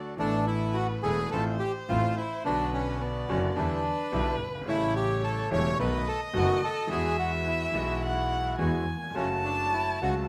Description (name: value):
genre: tango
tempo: 107 BPM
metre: 4/4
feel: rubato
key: A major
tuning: A4 = 439 Hz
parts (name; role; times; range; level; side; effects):
- warm concert grand piano; accompaniment; 0.0-10.3 s; E1 to A4; -35 LUFS; equal; none
- bandoneon; stabs; 0.0-10.3 s; G#3 to A4; -43 LUFS; equal; none
- bandoneon; melody; 0.2-10.1 s; B3 to C#5; -33 LUFS; equal; none
- warm violin; second line; 0.2-10.3 s; B4 to A5; -36 LUFS; equal; none
- rich double bass; bass; 0.2-10.3 s; E1 to E2; -35 LUFS; equal; none
room: moderate large studio reverb, RT60 1.4 s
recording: none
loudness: -28 LUFS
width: mono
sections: 0.2-10.3 A section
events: break 0.0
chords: 0.2 Asus2; 1.3 Fmaj7/A; 2.5 Bm; 3.6 Em7; 4.7 A7; 5.8 B7; 6.9 Eadd9; 9.2 F#m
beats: | 0.19 0.76 1.32 1.89 | 2.45 3.01 3.57 4.13 | 4.68 5.24 5.79 6.35 | 6.90 7.46 8.02 8.60 | 9.17 9.74